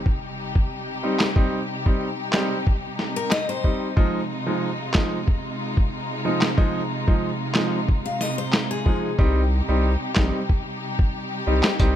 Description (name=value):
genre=dancehall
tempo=92 BPM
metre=4/4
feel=straight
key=C minor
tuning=A4 = 440 Hz
part: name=rich studio string section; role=sustained chords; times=0.0-12.0 s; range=C3 to G4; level=-28 LUFS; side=equal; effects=sidechain pumping
part: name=impact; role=sound effects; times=0.0-1.4 s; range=none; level=-50 LUFS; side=equal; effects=none
part: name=lo-fi sampler-style drum kit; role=drums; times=0.1-12.0 s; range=handclaps, hi-hat, kick drum, snare drum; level=-20 LUFS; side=equal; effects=none
part: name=clear grand piano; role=accompaniment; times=1.0-12.0 s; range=F3 to Eb4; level=-25 LUFS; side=right 1 dB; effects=none
part: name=picked steel-string acoustic guitar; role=arpeggios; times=3.2-3.9, 8.1-9.2 s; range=Ab4 to F5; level=-28 LUFS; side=left 5 dB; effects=ping-pong delay
part: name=saturated sub bass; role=bass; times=9.2-12.0 s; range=Bb1 to C2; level=-21 LUFS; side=equal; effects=none
room=little or no reverb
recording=none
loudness=-20 LUFS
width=side -11 dB against mid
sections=0.0-12.0 A section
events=impact 0.0-1.4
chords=0.0 Cm; 4.0 Fm7; 9.2 Cm